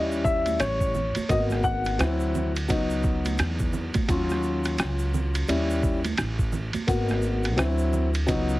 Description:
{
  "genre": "hip hop, jazz-hop",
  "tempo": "86 BPM",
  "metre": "4/4",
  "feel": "swing 61% on 16ths",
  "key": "unclear",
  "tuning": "A4 = 439 Hz",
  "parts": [
    { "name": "dark baby grand piano", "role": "accompaniment", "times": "0.0-8.6 s", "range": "F#3 to Gb5", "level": "-26 LUFS", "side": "left 2 dB", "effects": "plate reverb" },
    { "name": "upright bass", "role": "bass", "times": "0.0-8.6 s", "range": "Ab1 to Fb2", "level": "-27 LUFS", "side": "equal", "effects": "none" },
    { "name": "tube shaker and congas", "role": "percussion", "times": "0.1-8.6 s", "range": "none", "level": "-35 LUFS", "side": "right 5 dB", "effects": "none" },
    { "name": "lo-fi sampler-style drum kit", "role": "drums", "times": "0.2-8.5 s", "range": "hi-hat, kick drum, ride cymbal, rim click", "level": "-29 LUFS", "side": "right 1 dB", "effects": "none" }
  ],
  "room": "light reverb",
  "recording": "heavily compressed radio sound, multiband compression",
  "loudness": "-23 LUFS",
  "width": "side -18 dB against mid",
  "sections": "0.0-8.6 A section",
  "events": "grand piano solo 0.0-8.6",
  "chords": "0.0 Eb7b9; 1.3 Abm9; 2.0 D9; 2.7 Db9sus4; 4.1 Ebm9; 5.5 Eb7b9; 6.9 Abm9; 7.6 D9"
}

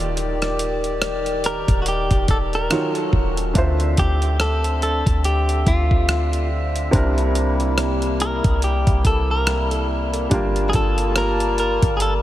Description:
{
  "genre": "contemporary R&B",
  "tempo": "71 BPM",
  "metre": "4/4",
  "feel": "swing 58% on 16ths",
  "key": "D minor",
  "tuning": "A4 = 439 Hz",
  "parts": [
    { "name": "felt-muted upright piano", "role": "accompaniment", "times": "0.0-12.2 s", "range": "C3 to E5", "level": "-27 LUFS", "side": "right 2 dB", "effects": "none" },
    { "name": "hand-pumped harmonium", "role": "sustained chords", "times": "0.0-12.2 s", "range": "C3 to A5", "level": "-25 LUFS", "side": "left 1 dB", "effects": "none" },
    { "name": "clean 808-style bass", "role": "bass", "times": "0.0-12.2 s", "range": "Eb1 to D2", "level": "-22 LUFS", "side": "equal", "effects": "none" },
    { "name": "dusty soul sampler-style drum kit", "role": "drums", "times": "0.2-12.2 s", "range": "hi-hat, kick drum, rim click", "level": "-22 LUFS", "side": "equal", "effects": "none" },
    { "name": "direct-recorded clean electric guitar", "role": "melody", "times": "1.5-12.1 s", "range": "F4 to Bb4", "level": "-24 LUFS", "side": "equal", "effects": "analog delay" }
  ],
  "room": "moderate huge ambient reverb, RT60 4.5 s",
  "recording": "dreamy mix soaked in reverb",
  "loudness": "-17 LUFS",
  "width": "side -13 dB against mid",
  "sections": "0.0-12.2 A section",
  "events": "none",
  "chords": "0.0 Ebmaj9; 2.7 Ebm9; 3.6 Dm9; 6.9 C7; 10.3 Gm9"
}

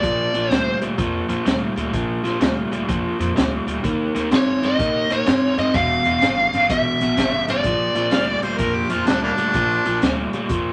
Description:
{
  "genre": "electric blues shuffle",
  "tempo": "126 BPM",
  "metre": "4/4",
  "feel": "swing 65% on 8ths",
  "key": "unclear",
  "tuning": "A4 = 439 Hz",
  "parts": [
    { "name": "biting lead guitar", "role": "melody", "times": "0.0-0.8, 4.4-8.4 s", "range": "Db5 to F5", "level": "-22 LUFS", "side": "equal", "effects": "overdrive" },
    { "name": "overdriven electric guitar", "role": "riff", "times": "0.0-10.7 s", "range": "E2 to C4", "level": "-24 LUFS", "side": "equal", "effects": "none" },
    { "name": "upright bass", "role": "bass", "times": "0.0-10.7 s", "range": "E1 to Bb2", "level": "-32 LUFS", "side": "equal", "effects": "none" },
    { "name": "crunchy breakbeat drum kit", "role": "drums", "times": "0.0-10.6 s", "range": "hi-hat, kick drum, snare drum", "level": "-25 LUFS", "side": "equal", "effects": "none" },
    { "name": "bright harmonica", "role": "second line", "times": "8.1-10.2 s", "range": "G3 to F5", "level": "-24 LUFS", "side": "equal", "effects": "overdrive" }
  ],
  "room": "moderate small room reverb, RT60 0.5 s",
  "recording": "none",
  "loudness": "-20 LUFS",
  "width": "mono",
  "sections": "0.0-10.7 A section",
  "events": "none",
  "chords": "0.0 Bb; 3.8 Eb7; 5.7 Edim7; 7.6 Bb"
}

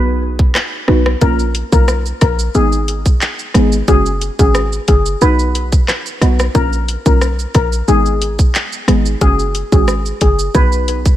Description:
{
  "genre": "dancehall",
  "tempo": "90 BPM",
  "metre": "4/4",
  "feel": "straight",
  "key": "unclear",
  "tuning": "A4 = 439 Hz",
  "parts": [
    { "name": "steel pan", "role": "melody", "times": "0.0-11.0 s", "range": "Ab4 to B4", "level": "-19 LUFS", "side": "left 3 dB", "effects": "ping-pong delay" },
    { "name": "deep mellow chord stab", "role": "accompaniment", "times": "0.0-11.2 s", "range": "Ab3 to B4", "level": "-19 LUFS", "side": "right 1 dB", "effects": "chorus" },
    { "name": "short 808-style bass", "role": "bass", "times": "0.0-11.1 s", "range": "Gb1 to B1", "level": "-15 LUFS", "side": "equal", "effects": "none" },
    { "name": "island pop drum kit", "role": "drums", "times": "0.4-11.2 s", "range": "handclaps, hi-hat, kick drum, rim click, shaker", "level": "-15 LUFS", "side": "equal", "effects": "none" }
  ],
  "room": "little or no reverb",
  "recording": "none",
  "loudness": "-11 LUFS",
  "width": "side -13 dB against mid",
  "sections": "0.0-11.2 A section",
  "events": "break 0.0-1.2",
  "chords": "0.0 B; 1.2 Bbm; 2.5 Abm; 3.9 Gbsus2; 5.2 B; 6.5 Bbm; 7.9 Abm; 9.2 Gbsus2; 10.5 B"
}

